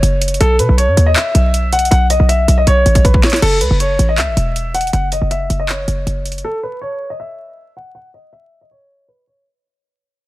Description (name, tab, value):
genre	hip hop, trap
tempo	159 BPM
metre	4/4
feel	half-time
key	F# dorian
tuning	A4 = 441 Hz
part	dark baby grand piano	melody	0.0-9.4 s	A4 to F#5	-18 LUFS	left 1 dB	low-pass filter
part	short 808-style bass	bass	0.0-6.4 s	E1 to B2	-14 LUFS	equal	none
part	trap drum kit	drums	0.0-6.4 s	crash cymbal, handclaps, hi-hat, kick drum, snare drum	-17 LUFS	equal	none
room	digital ambience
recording	dense, heavily limited modern master, vinyl crackle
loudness	-12 LUFS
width	side -17 dB against mid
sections	0.0-3.4 A section; 3.4-9.5 B section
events	drum fill 2.7-3.4; fade-out 3.4-9.5; filter sweep on grand piano 3.4-9.5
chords	0.4 N.C.; 3.4 F#5; 6.4 N.C.